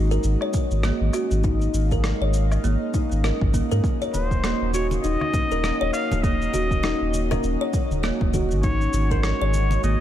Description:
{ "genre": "organic downtempo", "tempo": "100 BPM", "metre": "4/4", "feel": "swing 58% on 16ths", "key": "Eb minor", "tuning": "A4 = 440 Hz", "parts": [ { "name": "warm analog pad", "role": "sustained chords", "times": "0.0-10.0 s", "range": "Ab3 to F5", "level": "-31 LUFS", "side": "equal", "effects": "chorus, sidechain pumping, shimmer reverb" }, { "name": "kalimba", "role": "arpeggios", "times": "0.0-10.0 s", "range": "Bb3 to Db5", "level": "-26 LUFS", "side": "equal", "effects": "ping-pong delay, shimmer reverb" }, { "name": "warm sub bass", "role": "bass", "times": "0.0-10.0 s", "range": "Eb1 to Ab2", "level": "-23 LUFS", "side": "equal", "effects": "sidechain pumping" }, { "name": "bronze singing bowl", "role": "texture", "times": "0.0-10.0 s", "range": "none", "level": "barely audible", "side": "none", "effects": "none" }, { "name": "electronic shaker, woodblock and rim click", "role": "drums", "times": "0.1-10.0 s", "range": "none", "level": "-32 LUFS", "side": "left 1 dB", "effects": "studio reverb" }, { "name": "electronic kick drum", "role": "drums", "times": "0.5-9.2 s", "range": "none", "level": "-25 LUFS", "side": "equal", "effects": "overdrive, studio reverb" }, { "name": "trumpet with straight mute", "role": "melody", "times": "4.1-10.0 s", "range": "C5 to F5", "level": "-29 LUFS", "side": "left 2 dB", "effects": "ping-pong delay, shimmer reverb" }, { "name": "congas", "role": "percussion", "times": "4.1-9.8 s", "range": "none", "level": "-32 LUFS", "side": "left 1 dB", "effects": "none" } ], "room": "light reverb, small room ambience", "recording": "dark, warm production", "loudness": "-20 LUFS", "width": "side -11 dB against mid", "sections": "0.0-10.0 A section", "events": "none", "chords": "0.0 Ab7sus4; 3.8 Ebm7; 8.6 Ab7sus4" }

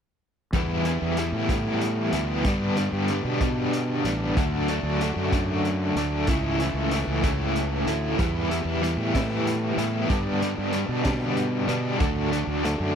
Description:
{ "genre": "psychedelic rock", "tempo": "63 BPM (dotted quarters)", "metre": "6/8", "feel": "straight", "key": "E minor", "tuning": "A4 = 442 Hz", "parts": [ { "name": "overdriven electric guitar", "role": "riff", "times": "0.5-12.9 s", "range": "G2 to E4", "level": "-25 LUFS", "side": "equal", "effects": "tremolo" }, { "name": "fuzz fingered electric bass", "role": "bass", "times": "0.5-12.9 s", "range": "A1 to B2", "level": "-28 LUFS", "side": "equal", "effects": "overdrive" }, { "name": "crunchy breakbeat drum kit", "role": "drums", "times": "0.5-12.8 s", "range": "hi-hat, kick drum, snare drum", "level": "-29 LUFS", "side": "equal", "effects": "none" } ], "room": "small room ambience", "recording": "none", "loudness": "-22 LUFS", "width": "side -7 dB against mid", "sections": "0.5-12.9 A section", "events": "none", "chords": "0.5 Em; 2.4 G; 4.4 D; 6.3 A/C#; 8.2 Em; 10.1 G; 12.0 D" }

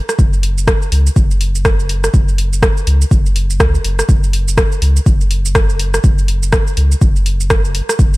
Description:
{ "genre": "afro house", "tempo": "123 BPM", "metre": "4/4", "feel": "swing 60% on 16ths", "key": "unclear", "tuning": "A4 = 439 Hz", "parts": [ { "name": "deep house drum kit", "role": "drums", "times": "0.1-8.2 s", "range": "hi-hat, rim click, shaker", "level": "-19 LUFS", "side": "right 1 dB", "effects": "overdrive" }, { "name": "warm sub bass", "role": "bass", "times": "0.2-8.2 s", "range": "F#1 to C#2", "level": "-15 LUFS", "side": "equal", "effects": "sidechain pumping" }, { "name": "electronic kick drum", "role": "drums", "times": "0.2-8.1 s", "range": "none", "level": "-12 LUFS", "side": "equal", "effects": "overdrive" } ], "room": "little or no reverb", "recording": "none", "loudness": "-11 LUFS", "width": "side -20 dB against mid", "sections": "0.0-8.2 A section", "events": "none", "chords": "none" }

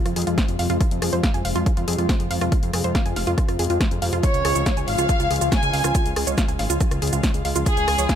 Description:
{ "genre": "uplifting trance", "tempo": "140 BPM", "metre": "4/4", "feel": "straight", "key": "F minor", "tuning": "A4 = 439 Hz", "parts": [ { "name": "wide unison pluck", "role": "arpeggios", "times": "0.1-8.2 s", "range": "F4 to Ab5", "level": "-28 LUFS", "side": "right 4 dB", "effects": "sidechain pumping, ping-pong delay" }, { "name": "fat analog bass", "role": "bass", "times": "0.1-8.1 s", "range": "F1 to F2", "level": "-25 LUFS", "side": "equal", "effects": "sidechain pumping" }, { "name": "punchy analog drum machine", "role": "drums", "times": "0.1-8.2 s", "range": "hi-hat, rim click, shaker, snare drum", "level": "-27 LUFS", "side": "equal", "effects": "overdrive" }, { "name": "electronic kick drum", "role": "drums", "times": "0.4-8.2 s", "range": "none", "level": "-21 LUFS", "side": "equal", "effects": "overdrive" }, { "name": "warm chamber violin section", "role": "second line", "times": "4.2-8.2 s", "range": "Ab4 to Ab5", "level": "-24 LUFS", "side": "equal", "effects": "ping-pong delay" } ], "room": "digital ambience", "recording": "none", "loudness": "-19 LUFS", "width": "side -9 dB against mid", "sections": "0.0-8.2 A section", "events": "none", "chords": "0.0 Fm; 4.2 Db" }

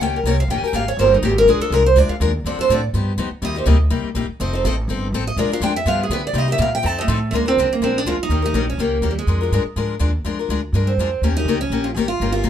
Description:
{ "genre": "acoustic string swing (jazz manouche)", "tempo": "246 BPM", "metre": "4/4", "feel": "swing 54% on 8ths", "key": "Bb mixolydian", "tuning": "A4 = 440 Hz", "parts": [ { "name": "picked steel-string acoustic guitar", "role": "melody", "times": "0.0-12.5 s", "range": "G3 to A5", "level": "-19 LUFS", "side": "right 2 dB", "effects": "none" }, { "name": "picked steel-string acoustic guitar", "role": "accompaniment", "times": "0.0-12.5 s", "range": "C3 to Bb4", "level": "-23 LUFS", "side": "left 7 dB", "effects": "none" }, { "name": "upright bass", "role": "bass", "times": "0.0-12.5 s", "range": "F1 to D3", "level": "-20 LUFS", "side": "equal", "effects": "none" } ], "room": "light reverb", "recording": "minimal, uncompressed stereo recording", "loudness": "-16 LUFS", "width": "side -10 dB against mid", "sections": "0.0-7.3 A section; 7.3-12.5 B section", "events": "steel-string acoustic guitar solo 0.0-7.3", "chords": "0.0 Eb7; 1.5 Bb7; 2.4 Dm7; 2.9 Gaug7; 3.4 Cm7; 4.4 F7; 5.4 Bb7; 5.9 G7; 6.3 Cm7; 6.8 F7; 7.3 Bb7; 8.3 Eb7; 9.3 Bb7; 11.2 Eb7" }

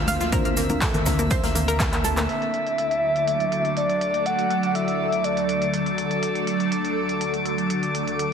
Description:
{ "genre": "progressive house", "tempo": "122 BPM", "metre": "4/4", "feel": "straight", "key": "D major", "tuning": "A4 = 440 Hz", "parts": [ { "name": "evolving wavetable pad", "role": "sustained chords", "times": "0.0-8.3 s", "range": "D2 to A4", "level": "-26 LUFS", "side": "right 1 dB", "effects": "ensemble chorus, built-in reverb, phaser, sidechain pumping" }, { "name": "analog pluck", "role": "arpeggios", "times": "0.0-2.3 s", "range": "Bb3 to F5", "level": "-27 LUFS", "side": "equal", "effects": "chorus, sidechain pumping, ping-pong delay" }, { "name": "dark detuned saw bass", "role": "bass", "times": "0.0-2.3 s", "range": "D2", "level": "-27 LUFS", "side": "equal", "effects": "sidechain pumping" }, { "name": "drifting glass-harmonics texture", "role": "texture", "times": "0.0-8.3 s", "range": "D5 to E6", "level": "-30 LUFS", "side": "left 1 dB", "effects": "chorus, built-in reverb, sidechain pumping" }, { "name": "big-room dance drum kit", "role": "drums", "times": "0.1-8.3 s", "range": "handclaps, hi-hat", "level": "-31 LUFS", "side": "right 1 dB", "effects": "overdrive, low-pass filter on hats, low-pass filter on snare, low-pass filter on room" }, { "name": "swinging big-band drum kit", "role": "drums", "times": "0.1-2.2 s", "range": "hi-hat, snare drum", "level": "-38 LUFS", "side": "left 2 dB", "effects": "sidechain pumping on hats, high-pass filter on hats, high-pass filter on snare, high-pass filter on room" }, { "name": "cabasa", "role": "percussion", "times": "0.1-2.3 s", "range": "none", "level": "-34 LUFS", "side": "left 2 dB", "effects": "none" }, { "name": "congas", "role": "percussion", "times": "0.1-2.1 s", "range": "none", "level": "-32 LUFS", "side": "left 3 dB", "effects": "none" }, { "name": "deep mellow chord stab", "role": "stabs", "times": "0.3-0.8 s", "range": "D3 to F5", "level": "-30 LUFS", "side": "left 2 dB", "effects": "chorus, phaser, sidechain pumping, ping-pong delay" }, { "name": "electronic kick drum", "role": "drums", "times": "0.3-1.9 s", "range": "none", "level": "-26 LUFS", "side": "equal", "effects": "overdrive" }, { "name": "soft octave-layered synth lead", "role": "melody", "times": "2.3-6.0 s", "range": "D5 to F#5", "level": "-24 LUFS", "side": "left 1 dB", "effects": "chorus, cassette tape, digital delay" } ], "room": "moderate lush hall reverb, RT60 1.9 s, small room ambience", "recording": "heavily compressed radio sound", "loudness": "-21 LUFS", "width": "side -7 dB against mid", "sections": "0.0-2.3 A section; 2.3-8.3 B section", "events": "filter sweep on synth arpeggio sound 0.0-2.3; drum fill 1.9-2.3", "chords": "0.0 Bbadd9/D; 2.3 D" }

